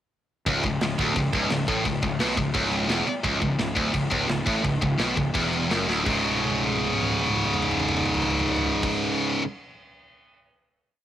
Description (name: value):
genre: heavy metal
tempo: 171 BPM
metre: 4/4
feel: straight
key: C# minor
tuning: A4 = 440 Hz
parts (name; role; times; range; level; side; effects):
- heavy high-gain guitar; riff; 0.5-9.4 s; C#2 to C#3; -24 LUFS; left 3 dB; distortion, cassette tape
- high-gain distorted guitar; riff; 0.5-9.4 s; C#2 to C#3; -28 LUFS; right 9 dB; distortion, cassette tape
- fuzz picked electric bass; bass; 0.5-8.9 s; C#1 to B1; -31 LUFS; equal; overdrive
- tight metal drum kit; drums; 0.5-10.4 s; crash cymbal, kick drum, snare drum, toms; -30 LUFS; equal; none
room: little or no reverb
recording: home recording on cassette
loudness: -22 LUFS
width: side -11 dB against mid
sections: 0.5-6.1 riff; 6.1-8.9 final chord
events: drum fill 5.9, 6.2-8.8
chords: 0.5 C#m; 6.1 C#5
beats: | 0.46 0.81 1.16 1.50 | 1.85 2.20 2.55 2.90 | 3.25 3.59 3.94 4.29 | 4.64 5.00 5.35 5.71 | 6.06 6.42 6.77 7.13 | 7.49 7.85 8.21 8.56